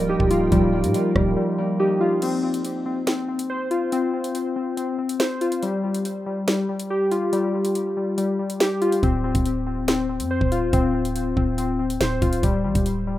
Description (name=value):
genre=hip hop, drill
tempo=141 BPM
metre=4/4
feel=half-time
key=unclear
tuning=A4 = 439 Hz
part: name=concert harp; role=accompaniment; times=0.0-4.8 s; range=F3 to F4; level=-25 LUFS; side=right 3 dB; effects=low-pass filter
part: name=hollow soft pad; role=sustained chords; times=0.0-2.2 s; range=F4 to G5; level=-32 LUFS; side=right 4 dB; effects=ensemble chorus
part: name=warbly lo-fi synth keys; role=arpeggios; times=0.0-13.2 s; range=G3 to C5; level=-22 LUFS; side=left 2 dB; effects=chorus, low-pass filter, ping-pong delay
part: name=growling 808-style bass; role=bass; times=0.0-1.4, 9.0-13.2 s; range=D1 to A2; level=-26 LUFS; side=right 1 dB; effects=none
part: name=drill drum kit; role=drums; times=0.2-13.0 s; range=crash cymbal, hi-hat, kick drum, rim click, snare drum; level=-25 LUFS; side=right 1 dB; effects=none
room=little or no reverb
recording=rough home demo mix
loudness=-20 LUFS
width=side -14 dB against mid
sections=0.0-2.2 A section; 2.2-13.2 B section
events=drums muted 1.4-2.2; break 2.2-9.0; kick muted 7.3-9.0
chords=0.0 Ebadd9/D; 2.2 Csus4; 5.6 Fsus2/G; 9.0 Dm7; 12.4 Dsus4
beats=0.09 | 0.52 0.94 1.37 1.79 | 2.22 2.65 3.07 3.50 | 3.92 4.35 4.77 5.20 | 5.62 6.05 6.48 6.90 | 7.33 7.75 8.18 8.60 | 9.03 9.46 9.88 10.31 | 10.73 11.16 11.58 12.01 | 12.43 12.86